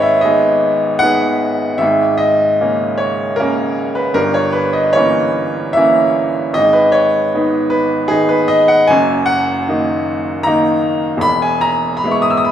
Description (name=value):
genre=classical, romantic nocturne for solo piano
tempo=76 BPM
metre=3/4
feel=rubato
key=G# minor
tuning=A4 = 440 Hz
part: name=clear baby grand piano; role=solo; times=0.0-12.5 s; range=E1 to E6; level=-12 LUFS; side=equal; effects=none
room=wet recital hall reverb, RT60 1.2 s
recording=minimal, uncompressed stereo recording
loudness=-12 LUFS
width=side -10 dB against mid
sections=0.0-12.5 A section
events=none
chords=0.0 G#m; 1.8 C#m69/G#; 4.2 Gdim7; 6.6 G#m; 8.9 D#m/F#; 11.2 E